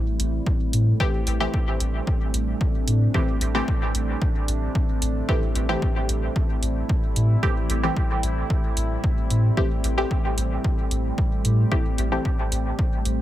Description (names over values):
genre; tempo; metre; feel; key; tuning
dub techno; 112 BPM; 4/4; straight; A minor; A4 = 440 Hz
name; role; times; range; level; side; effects
deep dark ambient pad; sustained chords; 0.0-13.2 s; G3 to G4; -30 LUFS; right 1 dB; chorus, built-in reverb, sidechain pumping
warm sub bass; bass; 0.2-13.2 s; A1 to A2; -23 LUFS; equal; sidechain pumping
electronic hi-hat; drums; 0.2-13.2 s; none; -30 LUFS; right 1 dB; none
electronic kick drum; drums; 0.5-12.9 s; none; -24 LUFS; equal; none
filtered dub chord stab; stabs; 1.0-12.5 s; E3 to G4; -28 LUFS; equal; chorus, phaser, sidechain pumping, dub echo
room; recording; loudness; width
little or no reverb; none; -20 LUFS; side -13 dB against mid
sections
0.0-13.2 A section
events
none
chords
0.0 Am7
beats
0.47 | 1.00 1.54 2.07 2.61 | 3.14 3.68 4.22 4.75 | 5.29 5.82 6.36 6.89 | 7.43 7.97 8.50 9.04 | 9.57 10.11 10.64 11.18 | 11.72 12.25 12.79